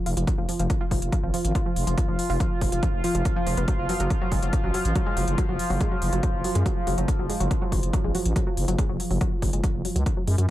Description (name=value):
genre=driving peak-time techno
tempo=141 BPM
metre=4/4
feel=straight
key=unclear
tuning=A4 = 440 Hz
part: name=analog drone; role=drone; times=0.0-10.5 s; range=F3 to F4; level=-31 LUFS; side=equal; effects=chorus, sidechain pumping
part: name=analog pluck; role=riff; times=0.1-10.4 s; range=F3 to F4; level=-30 LUFS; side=equal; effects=chorus, sidechain pumping, analog delay
part: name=growling FM bass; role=bass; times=0.1-10.5 s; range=F1 to Gb2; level=-26 LUFS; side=equal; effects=sidechain pumping
part: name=electronic hi-hat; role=drums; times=0.1-10.5 s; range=none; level=-35 LUFS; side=left 1 dB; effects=none
part: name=electronic kick drum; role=drums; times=0.3-10.1 s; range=none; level=-26 LUFS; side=equal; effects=none
room=little or no reverb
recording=echo-heavy mix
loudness=-22 LUFS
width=side -14 dB against mid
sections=0.0-10.5 A section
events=none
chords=none